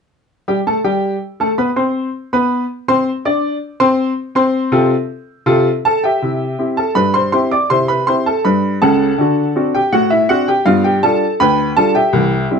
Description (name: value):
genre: ragtime piano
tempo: 81 BPM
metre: 2/4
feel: straight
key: C major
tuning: A4 = 440 Hz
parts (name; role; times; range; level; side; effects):
- clear upright piano; solo; 0.5-12.6 s; C2 to D6; -13 LUFS; equal; none
room: moderate studio reverb, RT60 0.6 s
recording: dark, warm production, nothing above 10.9 kHz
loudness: -13 LUFS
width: side -6 dB against mid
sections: 0.3-6.2 A section; 6.2-12.6 B section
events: none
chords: 0.3 C5; 3.2 F/C; 6.2 C; 9.2 D7; 10.6 G7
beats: | 0.29 1.03 | 1.77 2.51 | 3.24 3.98 | 4.72 5.46 | 6.21 6.95 | 7.69 8.44 | 9.17 9.91 | 10.65 11.39 | 12.12